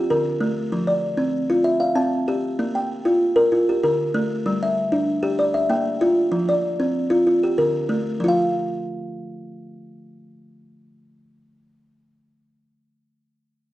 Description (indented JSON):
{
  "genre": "southern african traditional",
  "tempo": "128 BPM (dotted quarters)",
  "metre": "12/8",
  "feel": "straight",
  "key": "unclear",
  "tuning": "A4 = 440 Hz",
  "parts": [
    { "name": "buzzing kalimba", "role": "arpeggios", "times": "0.0-12.3 s", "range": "D3 to A5", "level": "-19 LUFS", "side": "equal", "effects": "none" }
  ],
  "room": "wet recital hall reverb, RT60 1.4 s",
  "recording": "none",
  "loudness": "-18 LUFS",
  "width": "side -15 dB against mid",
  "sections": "0.0-8.2 A section; 8.2-11.9 B section",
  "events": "none",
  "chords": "0.0 Dm; 0.7 F5; 1.7 C; 2.6 Bb5; 3.5 Dm; 4.5 G5; 5.4 Bb; 6.3 F5; 7.3 Dm; 8.2 N.C."
}